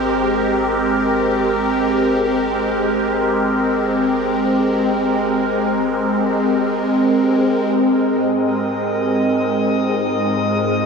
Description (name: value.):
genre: ambient.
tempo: free time.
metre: none.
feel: none.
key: Ab major.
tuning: A4 = 439 Hz.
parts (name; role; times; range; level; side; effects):
evolving wavetable pad; sustained chords; 0.0-10.9 s; Ab2 to Bb4; -16 LUFS; equal; phaser, built-in reverb.
warm sub bass; bass; 0.0-7.7 s; Ab1; -38 LUFS; equal; none.
drifting glass-harmonics texture; texture; 8.2-10.9 s; Eb5 to Eb6; -24 LUFS; left 1 dB; chorus, built-in reverb.
room: wet huge ambient reverb, RT60 8.6 s.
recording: worn, warbling old tape, cassette tape, warbly pitch drift.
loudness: -15 LUFS.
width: side -5 dB against mid.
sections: 0.0-7.8 A section; 7.8-10.9 B section.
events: fade-out on sub bass 0.0-7.8.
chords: 0.0 Ab.